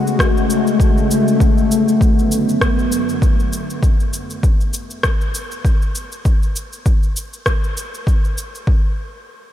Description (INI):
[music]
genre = organic downtempo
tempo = 99 BPM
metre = 4/4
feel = swing 56% on 16ths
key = unclear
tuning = A4 = 440 Hz
[part]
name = bowed-like drone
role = sustained chords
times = 0.0-3.8 s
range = F#2 to F#4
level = -17 LUFS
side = left 2 dB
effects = built-in reverb, sidechain pumping
[part]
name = electronic cabasa and rim click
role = drums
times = 0.1-8.7 s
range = none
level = -25 LUFS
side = equal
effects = none
[part]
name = electronic kick drum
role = drums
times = 0.2-8.8 s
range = none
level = -15 LUFS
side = equal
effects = none
[sound]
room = light reverb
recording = none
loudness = -14 LUFS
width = side -12 dB against mid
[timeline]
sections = 0.0-8.7 A section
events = filter sweep on synth drone 0.0-3.8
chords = 0.0 F#madd9; 1.4 Bm7/F#; 3.8 N.C.